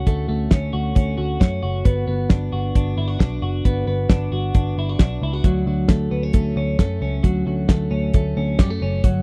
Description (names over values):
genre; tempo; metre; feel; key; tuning
jangly indie pop; 134 BPM; 4/4; straight; D major; A4 = 440 Hz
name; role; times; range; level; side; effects
twelve-string electric guitar; arpeggios; 0.0-9.2 s; F#3 to F#4; -27 LUFS; equal; spring reverb
vintage muted picked electric bass; bass; 0.0-9.2 s; F#1 to F#2; -25 LUFS; equal; none
cloth-damped thuddy drum kit; drums; 0.1-9.1 s; hi-hat, kick drum, snare drum; -18 LUFS; equal; none
room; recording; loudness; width
little or no reverb; dry, close 1970s-style studio recording; -20 LUFS; mono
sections
0.0-9.2 A section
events
none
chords
0.0 Dmaj7; 1.9 Gmaj7; 5.4 Dmaj7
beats
| 0.07 0.52 0.96 1.41 | 1.86 2.31 2.75 3.20 | 3.65 4.10 4.55 5.00 | 5.45 5.89 6.34 6.79 | 7.24 7.69 8.14 8.59 | 9.04